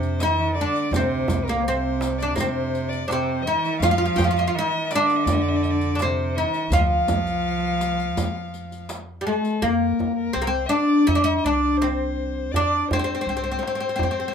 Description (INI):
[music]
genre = Arabic maqam ensemble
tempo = 83 BPM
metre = 4/4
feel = straight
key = F maqam rast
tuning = A4 = 440 Hz
[part]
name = oud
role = melody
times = 0.0-14.3 s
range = G3 to F4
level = -22 LUFS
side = equal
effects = none
[part]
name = dark violin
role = second line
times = 0.0-14.3 s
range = A4-47c to G5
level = -30 LUFS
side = left 6 dB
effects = none
[part]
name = rich cello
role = second line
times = 0.0-8.9 s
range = Bb2 to F3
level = -28 LUFS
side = right 5 dB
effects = none
[part]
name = upright bass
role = bass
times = 0.0-14.3 s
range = C2 to F2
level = -28 LUFS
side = equal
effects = none
[part]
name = riq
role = percussion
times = 0.0-9.5 s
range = none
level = -33 LUFS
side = left 4 dB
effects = none
[part]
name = darbuka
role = percussion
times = 0.2-14.2 s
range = none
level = -28 LUFS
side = right 2 dB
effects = none
[sound]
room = light reverb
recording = minimal, uncompressed stereo recording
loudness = -20 LUFS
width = side -7 dB against mid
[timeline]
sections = 0.0-9.6 A section; 9.6-14.3 B section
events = none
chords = none